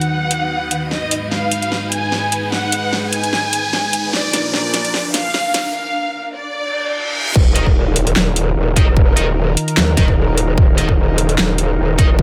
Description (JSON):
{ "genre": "heavy wobble dubstep", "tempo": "149 BPM", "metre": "4/4", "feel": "swing 54% on 16ths, half-time", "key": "Eb harmonic minor", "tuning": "A4 = 440 Hz", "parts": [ { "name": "dark symphonic violin section", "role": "melody", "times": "0.0-7.3 s", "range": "D5 to Ab5", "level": "-23 LUFS", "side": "equal", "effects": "low-pass filter, delay" }, { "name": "lush unison pad", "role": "sustained chords", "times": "0.0-12.2 s", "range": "Eb2 to B4", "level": "-26 LUFS", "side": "equal", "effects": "chorus, vintage 12-bit sampler grit, sidechain pumping" }, { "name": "dubstep drum kit", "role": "drums", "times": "0.0-12.1 s", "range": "crash cymbal, handclaps, hi-hat, snare drum", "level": "-22 LUFS", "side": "equal", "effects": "high-pass filter on hats, high-pass filter on snare, high-pass filter on cymbals" }, { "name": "riser, reverse cymbal and sub drop", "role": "sound effects", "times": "0.0-9.0 s", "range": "none", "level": "-28 LUFS", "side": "equal", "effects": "none" }, { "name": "granular cloud pad", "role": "texture", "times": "0.0-5.7 s", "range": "D4 to B5", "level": "-30 LUFS", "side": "equal", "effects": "built-in reverb, sidechain pumping" }, { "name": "growl bass", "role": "bass", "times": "7.4-12.2 s", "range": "Eb1 to Eb2", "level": "-19 LUFS", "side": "equal", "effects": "chorus, overdrive" }, { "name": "electronic kick drum", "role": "drums", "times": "7.4-12.2 s", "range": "none", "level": "-15 LUFS", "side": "equal", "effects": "overdrive" }, { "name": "high-gain distorted guitar", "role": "stabs", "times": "7.6-12.1 s", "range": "Eb4 to Eb5", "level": "-27 LUFS", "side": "equal", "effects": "distortion, delay" } ], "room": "light reverb, digital ambience", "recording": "high-pass filter", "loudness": "-17 LUFS", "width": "mono", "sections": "0.0-7.4 A section; 7.4-12.2 B section", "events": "build-up 0.0-7.4; riser 0.0-5.7; filter sweep on analog synth pad 0.0-7.4; drum fill 0.9-5.7; break 5.7-7.4; reverse cymbal 6.7-7.4; drop 7.4-12.2; impact 7.4-9.0", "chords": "0.0 B/D#; 0.9 Abm; 4.1 Bb; 7.4 Ebsus2", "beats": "0.11 0.51 | 0.91 1.31 1.72 2.12 | 2.52 2.92 3.33 3.73 | 4.13 4.54 4.94 5.34 | 5.74 6.15 6.55 6.95 | 7.36 7.76 8.16 8.56 | 8.96 9.37 9.77 10.17 | 10.58 10.98 11.38 11.78 | 12.19" }